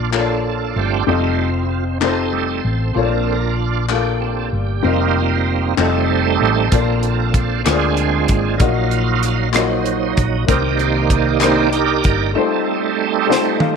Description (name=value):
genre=slow gospel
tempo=64 BPM (dotted quarters)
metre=6/8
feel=straight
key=Bb major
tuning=A4 = 440 Hz
part: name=warm grand piano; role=accompaniment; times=0.0-13.8 s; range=Bb2 to F5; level=-21 LUFS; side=left 12 dB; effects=none
part: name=bright tonewheel organ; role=sustained chords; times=0.0-13.8 s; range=Eb3 to F5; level=-19 LUFS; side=right 12 dB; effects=slow rotary speaker, chorus vibrato
part: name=hollow-body short-scale fingered electric bass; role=bass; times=0.0-12.3 s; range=F1 to D2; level=-20 LUFS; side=equal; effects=none
part: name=group handclap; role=percussion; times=0.1-11.7 s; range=none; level=-25 LUFS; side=left 12 dB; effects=none
part: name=crisp fusion drum kit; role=drums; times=6.7-13.8 s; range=hi-hat, kick drum, rim click, snare drum, toms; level=-18 LUFS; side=equal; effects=none
room=light reverb, studio reverb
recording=1960s-style stereo with parts hard left and right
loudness=-15 LUFS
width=side -6 dB against mid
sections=0.0-13.8 A section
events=tonewheel organ solo 0.0-13.8; grand piano fill 13.3-13.8; drum fill 13.3-13.8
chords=0.0 Bbmaj7; 1.1 F7; 3.0 Bbmaj7; 4.8 F7sus4; 5.8 F7; 6.7 Bbmaj7; 7.7 Bb7/D; 8.6 Ebmadd9/Bb; 10.5 Cm7; 12.4 F7